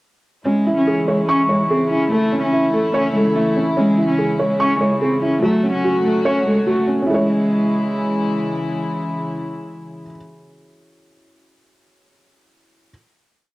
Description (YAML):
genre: hip hop, drill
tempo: 145 BPM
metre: 4/4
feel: half-time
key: C# minor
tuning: A4 = 439 Hz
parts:
  - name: warm cello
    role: melody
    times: 0.5-8.3 s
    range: G#3 to C#4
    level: -19 LUFS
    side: equal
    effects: low-pass filter, cassette tape, tape echo
  - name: felt-muted upright piano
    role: accompaniment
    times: 0.5-12.9 s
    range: F#3 to C#6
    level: -19 LUFS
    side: right 1 dB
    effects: low-pass filter, cassette tape
  - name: dark chamber string section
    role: sustained chords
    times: 0.5-10.1 s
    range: C#3 to F#4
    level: -24 LUFS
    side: left 1 dB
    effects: cassette tape
room: moderate spring reverb, RT60 1.3 s, studio reverb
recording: home recording on cassette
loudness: -16 LUFS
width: side -20 dB against mid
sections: 0.5-7.1 breakdown; 7.1-10.4 final chord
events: none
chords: 0.5 C#m; 2.1 A; 3.8 C#m; 5.4 F#m; 7.1 C#m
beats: | 0.46 0.87 1.29 1.70 | 2.12 2.53 2.94 3.36 | 3.77 4.18 4.60 5.01 | 5.43 5.84 6.25 6.67 | 7.08 7.50 7.91 8.32 | 8.74 9.15 9.56 9.98